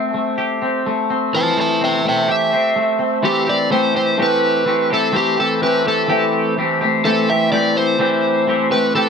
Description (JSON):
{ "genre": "rock", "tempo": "126 BPM", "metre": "4/4", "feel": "straight", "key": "unclear", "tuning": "A4 = 439 Hz", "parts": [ { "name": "overdriven semi-hollow guitar", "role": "melody", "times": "0.0-9.1 s", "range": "G4 to A5", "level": "-18 LUFS", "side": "right 1 dB", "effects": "none" }, { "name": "twangy electric guitar", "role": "riff", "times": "0.0-9.1 s", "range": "E3 to G4", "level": "-17 LUFS", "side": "left 1 dB", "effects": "lush chorus" } ], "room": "light reverb", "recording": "dark, warm production", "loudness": "-14 LUFS", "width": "side -6 dB against mid", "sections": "0.0-3.2 A section; 3.2-9.1 B section", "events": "overdriven electric guitar solo 0.0-3.2", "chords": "0.0 Am7" }